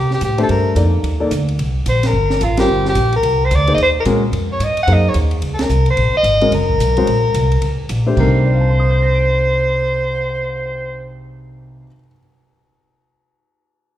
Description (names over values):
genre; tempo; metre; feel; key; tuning
modal jazz; 219 BPM; 4/4; swing 61% on 8ths; C dorian; A4 = 437 Hz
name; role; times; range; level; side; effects
mellow soprano saxophone; melody; 0.0-11.1 s; F4 to Gb5; -17 LUFS; left 1 dB; none
upright bass; bass; 0.0-11.8 s; Gb1 to C3; -17 LUFS; equal; none
compact cocktail drum kit; drums; 0.1-10.3 s; crash cymbal, cymbal swell, hi-hat, kick drum, ride cymbal, snare drum; -27 LUFS; right 1 dB; none
warm concert grand piano; accompaniment; 0.4-12.2 s; C3 to D7; -20 LUFS; left 2 dB; none
room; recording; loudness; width
moderate scoring stage reverb, RT60 1.8 s; recorded in a church or concert hall; -13 LUFS; side -12 dB against mid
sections
0.0-8.2 A section; 8.2-10.4 B section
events
band accent 2.5, 5.6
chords
0.0 Cm9; 3.8 Ebm7; 8.2 Cm9